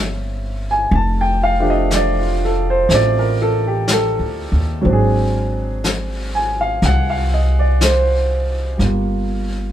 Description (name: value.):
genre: jazz.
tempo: 61 BPM.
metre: 4/4.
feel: swing 68% on 8ths.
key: unclear.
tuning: A4 = 442 Hz.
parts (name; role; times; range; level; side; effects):
warm upright piano; accompaniment; 0.0-9.7 s; Db3 to A5; -18 LUFS; right 1 dB; none.
upright bass; bass; 0.0-9.7 s; F1 to Eb2; -18 LUFS; equal; none.
vintage brush drum kit; drums; 0.9-9.7 s; brushed snare drum, hi-hat, snare drum; -24 LUFS; left 2 dB; none.
room: light reverb.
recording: band playing live in one room.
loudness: -15 LUFS.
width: side -11 dB against mid.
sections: 0.0-8.8 A section.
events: none.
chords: 0.0 C7b9; 0.9 F69; 4.9 Ab7#11; 8.8 Gm7.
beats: | 0.92 1.90 2.88 3.87 | 4.85 5.83 6.82 7.80 | 8.79.